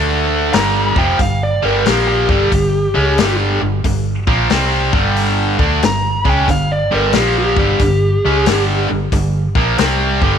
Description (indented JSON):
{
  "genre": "blues rock power trio and southern rock",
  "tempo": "91 BPM",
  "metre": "4/4",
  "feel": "swing 65% on 8ths",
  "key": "unclear",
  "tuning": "A4 = 444 Hz",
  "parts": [
    { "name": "distorted electric guitar", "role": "riff", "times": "0.0-10.4 s", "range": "F2 to D4", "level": "-16 LUFS", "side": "equal", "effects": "overdrive" },
    { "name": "vintage muted fingered electric bass", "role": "bass", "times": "0.0-10.4 s", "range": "F1 to D2", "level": "-19 LUFS", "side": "right 1 dB", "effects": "none" },
    { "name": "biting lead guitar", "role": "melody", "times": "0.5-8.7 s", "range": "G4 to Bb5", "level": "-18 LUFS", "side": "equal", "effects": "overdrive" },
    { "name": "vintage drum kit", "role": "drums", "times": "0.5-10.3 s", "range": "hi-hat, kick drum, snare drum", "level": "-18 LUFS", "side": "left 3 dB", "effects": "none" }
  ],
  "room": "light reverb, studio reverb",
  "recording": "1960s-style stereo",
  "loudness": "-12 LUFS",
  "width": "side -8 dB against mid",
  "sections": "0.0-10.4 A section",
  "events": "none",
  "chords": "0.0 D5; 0.5 G5"
}